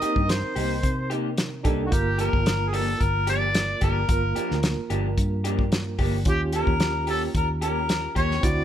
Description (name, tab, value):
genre	straight-eighth soul blues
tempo	111 BPM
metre	4/4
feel	straight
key	G minor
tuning	A4 = 440 Hz
part	mellow harmonica	melody	0.0-8.6 s	F#4 to Eb5	-27 LUFS	left 1 dB	overdrive
part	barky tine electric piano	accompaniment	0.0-8.6 s	Bb3 to Bb4	-31 LUFS	right 5 dB	overdrive, fast tremolo
part	electric guitar through a small old amp	stabs	0.0-8.3 s	F3 to G4	-31 LUFS	left 1 dB	vibrato effect
part	vintage muted fingered electric bass	bass	0.0-8.6 s	G1 to C3	-27 LUFS	equal	none
part	warm soul drum kit	drums	0.0-8.6 s	hi-hat, kick drum, snare drum	-26 LUFS	equal	none
room	little or no reverb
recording	none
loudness	-22 LUFS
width	side -10 dB against mid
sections	0.0-8.6 A section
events	none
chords	0.0 Cm7; 1.9 Gm7; 6.3 Eb7